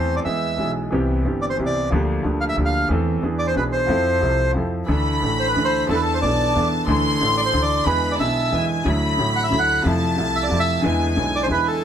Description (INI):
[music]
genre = tango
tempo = 181 BPM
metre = 3/4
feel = rubato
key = unclear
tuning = A4 = 440 Hz
[part]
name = bandoneon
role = melody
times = 0.0-11.8 s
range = A4 to F#5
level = -22 LUFS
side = right 2 dB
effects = none
[part]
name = bright concert grand piano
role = accompaniment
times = 0.0-11.8 s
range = G1 to A4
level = -22 LUFS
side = equal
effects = none
[part]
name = upright bass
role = bass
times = 0.0-11.8 s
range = G1 to F2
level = -25 LUFS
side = equal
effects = none
[part]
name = warm studio violin section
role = second line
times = 4.9-11.8 s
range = G#5 to C6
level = -24 LUFS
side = left 2 dB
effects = none
[sound]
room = light reverb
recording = close, detailed microphones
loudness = -18 LUFS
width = side -9 dB against mid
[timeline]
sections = 0.0-11.8 A section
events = none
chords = 0.3 E; 0.9 Cmaj7; 1.9 Bb6/D; 2.9 Am/E; 3.2 E7; 3.9 Fmaj7; 4.9 Dsus2; 5.9 E7sus4; 6.9 Dsus2; 7.9 E7; 8.9 Dadd9; 9.9 Fmaj7; 10.8 E7